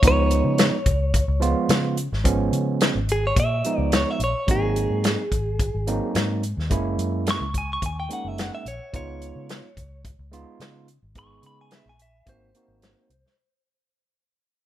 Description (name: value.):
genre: straight-eighth soul blues.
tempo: 108 BPM.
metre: 4/4.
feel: straight.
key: Db mixolydian.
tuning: A4 = 440 Hz.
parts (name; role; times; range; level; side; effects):
direct-recorded clean electric guitar; melody; 0.0-13.4 s; Ab4 to Db6; -26 LUFS; equal; spring reverb.
overdriven tine electric piano; accompaniment; 0.0-13.1 s; F3 to Ab4; -26 LUFS; right 4 dB; none.
vintage muted fingered electric bass; bass; 0.0-13.2 s; Gb1 to Db3; -26 LUFS; left 1 dB; none.
warm soul drum kit; drums; 0.0-13.3 s; hi-hat, kick drum, snare drum; -22 LUFS; left 1 dB; none.
room: light reverb.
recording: none.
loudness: -20 LUFS.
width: side -12 dB against mid.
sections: 0.0-13.4 A section.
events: fade-out 0.0-13.4.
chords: 0.0 Db9; 4.5 Ab9; 6.7 Gb9; 8.9 Db9; 12.3 Ab9.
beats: | 0.03 0.59 1.14 1.70 | 2.26 2.81 3.37 3.92 | 4.48 5.04 5.59 6.15 | 6.71 7.26 7.82 8.38 | 8.93 9.49 10.04 10.60 | 11.15 11.71 12.27 12.82.